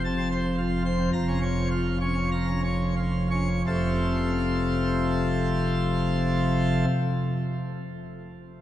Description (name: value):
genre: classical, organ toccata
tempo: 84-115 BPM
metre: 4/4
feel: straight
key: F major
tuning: A4 = 440 Hz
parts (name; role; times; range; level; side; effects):
- pipe organ, plenum; solo; 0.0-6.8 s; F1 to Bb5; -23 LUFS; equal; none
room: wet cathedral reverb, RT60 6.3 s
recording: heard from further back in the room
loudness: -23 LUFS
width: side -12 dB against mid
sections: 0.0-3.7 A section; 3.7-8.6 B section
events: slowing down 0.0-3.7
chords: 0.0 F; 1.1 Bbm/F; 3.7 F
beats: 0.04 0.57 | 1.13 1.71 2.32 2.97 | 3.67 4.38 5.10 5.81 | 6.52